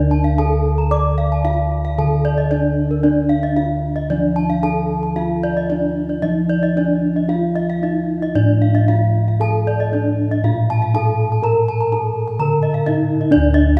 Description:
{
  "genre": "Balinese gamelan",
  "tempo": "113-133 BPM",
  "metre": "4/4",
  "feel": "straight",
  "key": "D pelog",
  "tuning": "A4 = 440 Hz",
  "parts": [
    { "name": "gamelan-type bronze metallophone", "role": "melody", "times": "0.0-13.8 s", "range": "D4 to D5", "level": "-24 LUFS", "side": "equal", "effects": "none" },
    { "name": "gamelan-type bossed gongs", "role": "bass", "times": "0.0-13.8 s", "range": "D2 to D5", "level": "-20 LUFS", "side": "equal", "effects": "none" },
    { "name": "gamelan-type bronze metallophone", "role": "arpeggios", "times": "0.1-13.8 s", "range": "Bb4-20c to D6", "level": "-25 LUFS", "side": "equal", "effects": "none" }
  ],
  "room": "wet concert hall reverb, RT60 2.3 s",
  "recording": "heard from further back in the room, small room ambience",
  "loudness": "-18 LUFS",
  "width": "mono",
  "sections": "0.0-13.3 A section",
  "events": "none",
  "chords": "none"
}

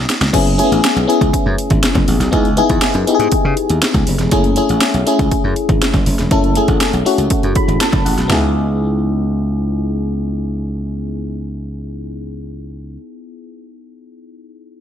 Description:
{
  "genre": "polished 1980s jazz-funk pop",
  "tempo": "120 BPM",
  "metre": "4/4",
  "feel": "straight",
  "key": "C# minor",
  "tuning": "A4 = 443 Hz",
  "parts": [
    { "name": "FM electric piano", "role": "accompaniment", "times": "0.0-14.8 s", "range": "A3 to B5", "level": "-18 LUFS", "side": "left 3 dB", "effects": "wide subtle chorus" },
    { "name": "slap bass", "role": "bass", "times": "0.0-13.0 s", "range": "E1 to C#3", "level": "-18 LUFS", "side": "equal", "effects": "none" },
    { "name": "house drum kit", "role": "drums", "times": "0.1-8.4 s", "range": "crash cymbal, hi-hat, kick drum, snare drum, toms", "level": "-16 LUFS", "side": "equal", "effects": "overdrive" }
  ],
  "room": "moderate plate reverb, RT60 1.4 s, digital ambience",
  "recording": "dreamy mix soaked in reverb",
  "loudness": "-13 LUFS",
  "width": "side -9 dB against mid",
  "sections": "0.3-8.3 A section; 8.3-12.3 B section",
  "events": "drum fill 0.0-0.3; FM electric piano fill 7.3-8.3",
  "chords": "0.3 F#7sus4; 2.3 C#m9; 4.3 F#m9; 8.3 C#m9"
}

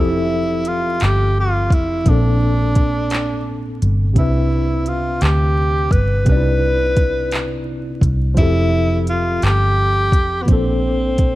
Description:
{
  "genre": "slow six-eight R&B",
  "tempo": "57 BPM (dotted quarters)",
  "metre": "6/8",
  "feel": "straight",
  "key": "C major",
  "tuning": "A4 = 440 Hz",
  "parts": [
    { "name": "breathy tenor saxophone", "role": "melody", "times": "0.0-11.4 s", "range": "B3 to B4", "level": "-20 LUFS", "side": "equal", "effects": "tape echo" },
    { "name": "tine electric piano", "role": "accompaniment", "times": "0.0-11.4 s", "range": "Bb2 to E5", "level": "-23 LUFS", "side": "equal", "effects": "overdrive, fast stereo tremolo" },
    { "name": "vintage muted fingered electric bass", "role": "bass", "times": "0.0-11.4 s", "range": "F1 to D2", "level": "-18 LUFS", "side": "equal", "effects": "none" },
    { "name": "smooth R&B drum kit", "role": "drums", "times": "0.6-11.3 s", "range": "handclaps, hi-hat, kick drum", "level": "-17 LUFS", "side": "equal", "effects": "none" }
  ],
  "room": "little or no reverb",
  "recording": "dark, warm production, vinyl crackle",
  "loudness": "-14 LUFS",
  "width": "side -16 dB against mid",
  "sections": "0.0-11.4 A section",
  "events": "none",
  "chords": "0.0 Fmaj9; 2.1 Bbmaj9; 4.2 Cmaj9; 8.4 Fmaj9; 10.5 Bbmaj9"
}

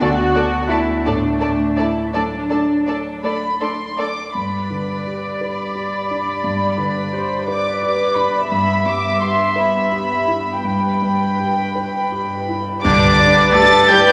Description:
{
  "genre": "cinematic, emotional film score for orchestra",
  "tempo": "54-59 BPM (dotted quarters)",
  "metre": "6/8",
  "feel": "rubato",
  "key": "G major",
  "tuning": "A4 = 441 Hz",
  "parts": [
    { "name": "warm symphonic violin section", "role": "melody", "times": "0.0-14.1 s", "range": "A5 to A6", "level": "-23 LUFS", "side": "equal", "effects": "none" },
    { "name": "dark symphonic violin section", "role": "second line", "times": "0.0-14.1 s", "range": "A4 to G5", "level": "-24 LUFS", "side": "equal", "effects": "none" },
    { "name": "mellow clarinet", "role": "second line", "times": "0.0-3.8 s", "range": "F#3 to B3", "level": "-28 LUFS", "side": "equal", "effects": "none" },
    { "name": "dark symphonic viola section", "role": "accompaniment", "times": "0.0-14.1 s", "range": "A3 to D5", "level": "-29 LUFS", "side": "equal", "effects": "none" },
    { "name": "warm grand piano", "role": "accompaniment", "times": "0.0-14.1 s", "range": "D2 to B4", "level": "-26 LUFS", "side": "equal", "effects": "none" },
    { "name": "warm symphonic cello section", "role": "bass", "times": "0.0-14.1 s", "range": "G2 to F#4", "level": "-26 LUFS", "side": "equal", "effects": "none" },
    { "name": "cymbal swell, clash cymbals and concert bass drum", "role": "percussion", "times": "8.5-14.1 s", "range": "none", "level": "-28 LUFS", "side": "equal", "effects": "none" },
    { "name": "bright oboe", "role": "second line", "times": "12.8-14.1 s", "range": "D4 to A4", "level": "-22 LUFS", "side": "equal", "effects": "none" },
    { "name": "bright silver concert flute", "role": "second line", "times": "12.8-14.1 s", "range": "D5 to A5", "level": "-20 LUFS", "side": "equal", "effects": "none" },
    { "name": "dark French horn section", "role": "sustained chords", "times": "12.8-14.1 s", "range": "G4 to B4", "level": "-25 LUFS", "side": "equal", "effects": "none" },
    { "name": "warm chamber double bass section", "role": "bass", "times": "12.8-14.1 s", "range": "G2", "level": "-32 LUFS", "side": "equal", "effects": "none" }
  ],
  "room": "wet scoring stage reverb, RT60 1.8 s",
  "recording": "none",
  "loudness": "-18 LUFS",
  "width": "mono",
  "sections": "0.0-4.3 A section; 4.3-12.8 B section; 12.8-14.1 C section",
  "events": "band accent 12.8-13.5",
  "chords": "0.0 D; 4.3 G; 8.5 Em/G; 12.8 G"
}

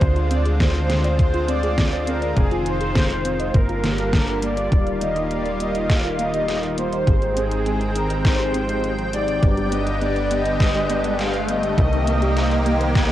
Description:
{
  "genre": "synthwave",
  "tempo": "102 BPM",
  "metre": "4/4",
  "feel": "straight",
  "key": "unclear",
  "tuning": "A4 = 441 Hz",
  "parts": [
    { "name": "soft supersaw", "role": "melody", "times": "0.0-13.1 s", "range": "Ab4 to F5", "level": "-25 LUFS", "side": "equal", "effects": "phaser, cassette tape, analog delay" },
    { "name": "lush unison pad", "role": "sustained chords", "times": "0.0-13.1 s", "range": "D3 to G5", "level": "-26 LUFS", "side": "equal", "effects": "chorus, sidechain pumping" },
    { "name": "soft round pluck", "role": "arpeggios", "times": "0.0-13.0 s", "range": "Bb3 to G5", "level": "-30 LUFS", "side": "right 2 dB", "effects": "chorus, analog delay" },
    { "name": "tight sequencer bass", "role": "bass", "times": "0.0-13.1 s", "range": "Eb1 to D2", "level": "-24 LUFS", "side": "equal", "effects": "none" },
    { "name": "electronic kick drum", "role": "drums", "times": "0.0-13.1 s", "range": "none", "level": "-19 LUFS", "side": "equal", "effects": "overdrive, cassette tape" },
    { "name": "pop drum kit", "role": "drums", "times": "0.0-13.1 s", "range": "hi-hat, snare drum", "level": "-27 LUFS", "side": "equal", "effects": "overdrive, high-pass filter on hats, cassette tape, high-pass filter on snare, high-pass filter on room" },
    { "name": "mellow synth brass", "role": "stabs", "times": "4.7-13.1 s", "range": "G3 to F5", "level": "-28 LUFS", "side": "left 2 dB", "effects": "chorus, phaser" },
    { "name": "riser and reverse cymbal", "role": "sound effects", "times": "7.8-13.1 s", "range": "none", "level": "-30 LUFS", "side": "right 1 dB", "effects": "none" }
  ],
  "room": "moderate spring reverb, RT60 2.1 s",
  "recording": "home recording on cassette",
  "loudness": "-18 LUFS",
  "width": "side -13 dB against mid",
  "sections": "0.0-4.7 A section; 4.7-13.1 B section",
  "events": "filter sweep on analog polysynth 4.7-13.1; riser 7.8-13.1; reverse cymbal 13.0",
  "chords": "0.0 Dm7b5; 2.4 Fm7; 3.5 Gm7; 4.7 Ebadd9; 7.1 Abmaj7; 9.4 G; 11.8 Cm7"
}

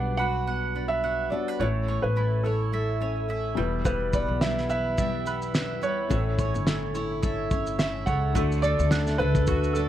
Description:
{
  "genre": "acoustic pop",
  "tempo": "107 BPM",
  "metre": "4/4",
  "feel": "swing 55% on 16ths",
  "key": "D major",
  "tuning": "A4 = 439 Hz",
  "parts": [
    { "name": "dark upright piano", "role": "melody", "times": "0.0-9.8 s", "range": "A4 to F#5", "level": "-30 LUFS", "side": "right 2 dB", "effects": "none" },
    { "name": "felt-muted upright piano", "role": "accompaniment", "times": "0.0-9.9 s", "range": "G3 to C#5", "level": "-37 LUFS", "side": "left 9 dB", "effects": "none" },
    { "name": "fingerpicked steel-string acoustic guitar", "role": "accompaniment", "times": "0.0-9.9 s", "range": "E2 to G4", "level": "-31 LUFS", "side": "left 1 dB", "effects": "double-tracked left and right" },
    { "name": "mandolin", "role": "arpeggios", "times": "0.0-9.9 s", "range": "G3 to G5", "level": "-34 LUFS", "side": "right 5 dB", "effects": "digital delay" },
    { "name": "upright bass", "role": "bass", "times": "0.0-9.9 s", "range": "E1 to D2", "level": "-28 LUFS", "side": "equal", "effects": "none" },
    { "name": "cloth-damped thuddy drum kit", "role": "drums", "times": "3.9-9.9 s", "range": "kick drum, shaker, snare drum", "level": "-28 LUFS", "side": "equal", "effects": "none" }
  ],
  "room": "little or no reverb",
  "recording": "none",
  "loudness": "-24 LUFS",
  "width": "side -12 dB against mid",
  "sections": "0.0-8.4 A section; 8.4-9.9 B section",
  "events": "none",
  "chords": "0.0 Gmaj7; 1.6 A; 3.6 Em; 6.1 A; 8.4 D"
}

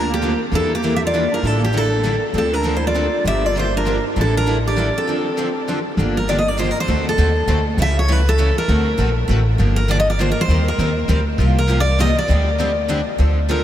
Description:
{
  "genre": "acoustic string swing (jazz manouche)",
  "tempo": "199 BPM",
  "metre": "3/4",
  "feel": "swing 58% on 8ths",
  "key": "D minor, G minor from 6.0 s",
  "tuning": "A4 = 440 Hz",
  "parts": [
    { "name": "picked steel-string acoustic guitar", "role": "melody", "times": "0.0-13.6 s", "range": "G4 to E5", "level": "-20 LUFS", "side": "equal", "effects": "analog delay" },
    { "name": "growling clarinet", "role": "second line", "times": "0.0-5.8 s", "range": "Bb3 to G4", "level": "-26 LUFS", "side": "right 3 dB", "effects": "analog delay" },
    { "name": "picked steel-string acoustic guitar", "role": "accompaniment", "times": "0.0-13.6 s", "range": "C3 to Bb4", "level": "-25 LUFS", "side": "left 3 dB", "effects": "lush chorus" },
    { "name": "picked steel-string acoustic guitar", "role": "accompaniment", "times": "0.0-13.6 s", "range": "C3 to C#5", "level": "-28 LUFS", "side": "right 6 dB", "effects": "none" },
    { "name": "upright bass", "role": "bass", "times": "0.0-13.6 s", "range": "G1 to E2", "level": "-18 LUFS", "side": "equal", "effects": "none" }
  ],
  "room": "moderate huge ambient reverb, RT60 8.0 s",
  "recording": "dreamy mix soaked in reverb",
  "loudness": "-15 LUFS",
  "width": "side -11 dB against mid",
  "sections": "0.0-6.0 A section; 6.0-13.2 B section",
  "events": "break 5.1-6.0",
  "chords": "0.0 Gm7/D; 0.5 Em7b5; 1.4 A7sus4; 2.3 Dm7; 3.3 Gm7; 4.2 A7sus4; 5.1 Dm7; 6.0 Gm7; 6.9 D7b9; 7.8 A7/C#; 8.7 D7b13; 9.6 Gm7; 10.5 Eb6; 11.4 C7sus4; 12.3 D7sus4"
}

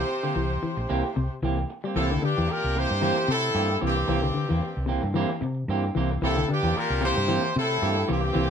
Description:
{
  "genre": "afrobeat",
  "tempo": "112 BPM",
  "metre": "4/4",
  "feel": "swing 56% on 16ths",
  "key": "C mixolydian",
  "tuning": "A4 = 440 Hz",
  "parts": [
    { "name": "brilliant horn section", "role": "melody", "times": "0.0-8.5 s", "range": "G4 to C5", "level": "-28 LUFS", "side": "equal", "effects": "none" },
    { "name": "clear trumpet", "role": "second line", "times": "0.0-8.5 s", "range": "C4 to G4", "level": "-35 LUFS", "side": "right 2 dB", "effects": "none" },
    { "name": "raspy baritone saxophone", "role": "second line", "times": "0.0-8.5 s", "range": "G2 to C3", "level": "-32 LUFS", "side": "left 3 dB", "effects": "none" },
    { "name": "semi-hollow electric guitar", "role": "arpeggios", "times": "0.0-8.5 s", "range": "C3 to G3", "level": "-29 LUFS", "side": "left 4 dB", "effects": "none" },
    { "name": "clean electric guitar", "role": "stabs", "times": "0.1-8.5 s", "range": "E3 to G4", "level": "-30 LUFS", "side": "right 5 dB", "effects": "slapback echo" },
    { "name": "hollow-body short-scale fingered electric bass", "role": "bass", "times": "0.4-8.5 s", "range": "Bb1 to C3", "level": "-28 LUFS", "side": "equal", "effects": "none" }
  ],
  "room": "moderate club reverb, RT60 0.5 s",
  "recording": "none",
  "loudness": "-23 LUFS",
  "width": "side -7 dB against mid",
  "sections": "0.0-1.9 A section; 1.9-8.5 B section",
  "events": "none",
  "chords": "0.0 C7"
}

